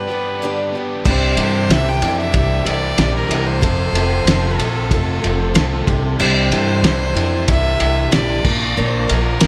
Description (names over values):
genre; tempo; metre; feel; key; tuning
folk rock and heartland rock; 93 BPM; 4/4; straight; C mixolydian; A4 = 441 Hz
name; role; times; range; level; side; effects
rich fiddle; melody; 0.0-9.5 s; A4 to G5; -25 LUFS; equal; slapback echo
picked old ladder-braced acoustic guitar; accompaniment; 0.0-9.5 s; G2 to Bb4; -26 LUFS; equal; slapback echo
mellow tonewheel organ; sustained chords; 0.0-9.5 s; G4 to D6; -35 LUFS; equal; none
overdriven electric guitar; riff; 0.0-9.5 s; F2 to D4; -28 LUFS; equal; none
upright bass; bass; 1.1-9.5 s; F1 to G2; -22 LUFS; equal; none
cloth-damped thuddy drum kit; drums; 1.1-9.5 s; crash cymbal, kick drum, ride cymbal, snare drum; -21 LUFS; equal; none
room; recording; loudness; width
light reverb, small room ambience; none; -17 LUFS; mono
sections
0.0-1.1 A section; 1.1-9.5 B section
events
break 0.0-1.1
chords
0.0 G; 1.1 Cadd9; 3.6 F; 5.9 Cadd9; 8.5 Bb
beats
0.41 | 1.06 1.70 2.34 2.99 | 3.63 4.28 4.92 5.56 | 6.21 6.85 7.49 8.14 | 8.78 9.42